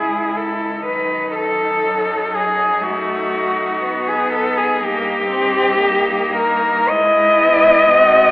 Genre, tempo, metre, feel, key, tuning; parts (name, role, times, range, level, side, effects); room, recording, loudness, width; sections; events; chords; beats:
classical, lyrical piece for cello ensemble; 53-61 BPM; 4/4; rubato; A4 = 444 Hz
rich cello; melody; 0.0-8.3 s; F#4 to D#5; -14 LUFS; left 1 dB
warm cello; second line; 0.0-8.3 s; D#4 to F#4; -24 LUFS; right 2 dB
rich cello; accompaniment; 0.0-8.3 s; D#3 to B#3; -24 LUFS; equal
warm cello; bass; 0.0-8.3 s; C#2 to G#2; -30 LUFS; equal
wet recital hall reverb, RT60 1.4 s; recorded in a church or concert hall, telephone sound; -14 LUFS; side -20 dB against mid
0.0-8.3 A section
0.0 C#m; 0.8 D#dim/F#; 4.8 D#/G; 6.9 Emaj7/G#
| 0.85 1.84 2.82 3.81 | 4.80 5.81 6.90 7.96